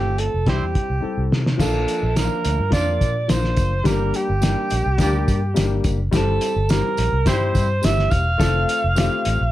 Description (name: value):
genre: uptempo 1960s-style soul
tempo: 106 BPM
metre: 4/4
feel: straight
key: unclear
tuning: A4 = 438 Hz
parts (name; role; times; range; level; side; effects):
- warm alto saxophone; melody; 0.0-9.5 s; G4 to F5; -23 LUFS; right 3 dB; none
- dark upright piano; accompaniment; 0.0-9.4 s; F3 to A4; -26 LUFS; left 6 dB; none
- vintage muted fingered electric bass; bass; 0.0-9.5 s; E1 to C3; -22 LUFS; equal; none
- cloth-damped thuddy drum kit; drums; 0.2-9.4 s; crash cymbal, hi-hat, kick drum, snare drum; -22 LUFS; equal; none
- clear horn section; second line; 0.5-7.7 s; G3 to D5; -28 LUFS; right 2 dB; none
- tambourine; percussion; 1.6-9.4 s; none; -37 LUFS; right 7 dB; none
room: light reverb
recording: dark, warm production, faint mains hum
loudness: -17 LUFS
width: side -14 dB against mid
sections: 0.0-1.6 A section; 1.6-9.5 B section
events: band accent 0.0-1.6; drum fill 1.0-1.6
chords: 0.5 C; 1.6 Bb; 3.9 Gm; 6.1 C/G; 8.4 F